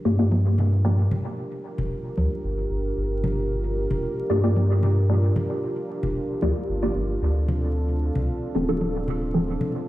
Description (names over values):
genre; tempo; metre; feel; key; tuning
dub techno; 113 BPM; 4/4; straight; G minor; A4 = 440 Hz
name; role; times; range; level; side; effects
dark analog pad; sustained chords; 0.0-9.9 s; C4 to Bb4; -29 LUFS; right 1 dB; chorus
filtered dub chord stab; stabs; 0.1-1.1, 4.3-9.6 s; F3 to D5; -26 LUFS; equal; phaser, cassette tape, dub echo
soft dub sub bass; bass; 0.1-9.6 s; D1 to G2; -23 LUFS; equal; none
electronic congas and toms; percussion; 0.3-9.7 s; none; -30 LUFS; left 1 dB; dub echo
room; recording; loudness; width
moderate lush hall reverb, RT60 2.1 s; played on a big sound system in a bare room, stone room reverb, vinyl crackle; -22 LUFS; side -16 dB against mid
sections
0.0-9.9 A section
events
filter sweep on synth stab 0.0-9.9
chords
0.0 Gm7; 7.2 Dm7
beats
0.32 | 0.85 1.38 1.91 2.44 | 2.97 3.50 4.03 4.57 | 5.10 5.63 6.16 6.69 | 7.22 7.75 8.28 8.81 | 9.34 9.88